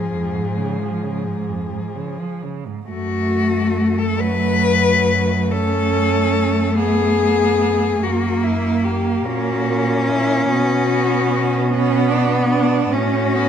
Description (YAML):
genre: classical, lyrical piece for cello ensemble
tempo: 42-50 BPM (dotted quarters)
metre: 12/8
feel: rubato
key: F# minor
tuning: A4 = 440 Hz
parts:
  - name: rich cello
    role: melody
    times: 0.0-13.5 s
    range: E4 to B4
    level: -21 LUFS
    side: left 6 dB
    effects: none
  - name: clear cello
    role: second line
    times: 0.0-13.5 s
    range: E#2 to D4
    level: -23 LUFS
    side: right 9 dB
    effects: none
  - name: rich cello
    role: accompaniment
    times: 0.0-13.5 s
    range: E#3 to C#4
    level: -21 LUFS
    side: left 2 dB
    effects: none
  - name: rich cello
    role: bass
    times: 0.1-13.5 s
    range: F#2 to B2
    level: -22 LUFS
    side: right 2 dB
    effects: none
room: moderate scoring stage reverb, RT60 1.8 s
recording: none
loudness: -16 LUFS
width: side -8 dB against mid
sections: 0.0-2.9 A section; 2.9-13.5 B section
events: none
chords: 0.0 C#/E#; 2.9 F#m; 8.0 F#; 10.5 Bm; 12.9 F#m/A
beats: 0.14 1.51 | 2.90 4.21 5.52 6.77 | 8.02 9.24 10.49 11.70 | 12.92